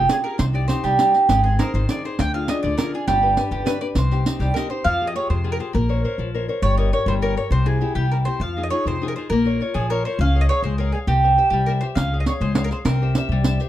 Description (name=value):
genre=italian folk, Italian serenade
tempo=135 BPM (dotted quarters)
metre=6/8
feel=straight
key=C minor, F minor from 4.9 s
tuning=A4 = 439 Hz
part: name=mandolin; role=melody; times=0.0-13.3 s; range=G4 to G5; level=-22 LUFS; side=right 3 dB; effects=none
part: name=nylon-string guitar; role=accompaniment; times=0.0-13.7 s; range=C3 to F5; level=-25 LUFS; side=left 4 dB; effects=none
part: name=upright bass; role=bass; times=0.0-13.6 s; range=G1 to F2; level=-21 LUFS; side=equal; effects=none
part: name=riq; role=percussion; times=0.1-4.7, 12.0-13.7 s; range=none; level=-25 LUFS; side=right 3 dB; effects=none
room=moderate studio reverb, RT60 0.5 s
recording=dark, warm production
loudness=-18 LUFS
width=side -12 dB against mid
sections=0.0-4.9 A section; 4.9-13.7 B section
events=nylon-string guitar fill 4.4-4.9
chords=0.4 Cm; 1.3 Ab; 2.2 Ddim; 3.1 G; 4.0 Cm; 4.9 Fmadd9; 5.7 Bbmadd9; 6.6 Gdim; 7.5 C; 8.4 Fm7; 9.3 Bbm; 10.2 Db; 11.1 C; 12.0 Db; 12.9 C